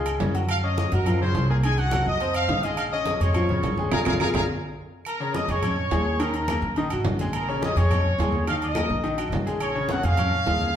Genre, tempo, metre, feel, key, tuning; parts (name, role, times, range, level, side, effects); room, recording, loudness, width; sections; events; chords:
latin, salsa; 210 BPM; 4/4; straight; Bb minor; A4 = 440 Hz
clear trumpet section; melody; 0.0-10.8 s; Gb4 to Eb6; -27 LUFS; equal
bright baby grand piano; accompaniment; 0.0-10.7 s; Db3 to Db6; -28 LUFS; left 2 dB
upright bass; bass; 0.0-10.8 s; Ab1 to Gb2; -26 LUFS; equal
agogo bells and timbales; percussion; 0.1-10.6 s; -32 LUFS; right 2 dB
claves; percussion; 0.1-10.3 s; -40 LUFS; right 5 dB
congas; percussion; 0.1-10.8 s; -31 LUFS; left 1 dB
wet large studio reverb, RT60 1.3 s; heard from further back in the room; -21 LUFS; side -9 dB against mid
0.0-5.1 A section; 5.1-10.8 B section
drum fill 3.9-5.1; band accent 3.9-5.1
0.5 Gbmaj7#11; 1.6 Cdim; 2.2 F5; 2.8 Bbm7; 6.2 Ebm; 7.3 Bbm7; 8.5 Ebm; 9.6 Bbm7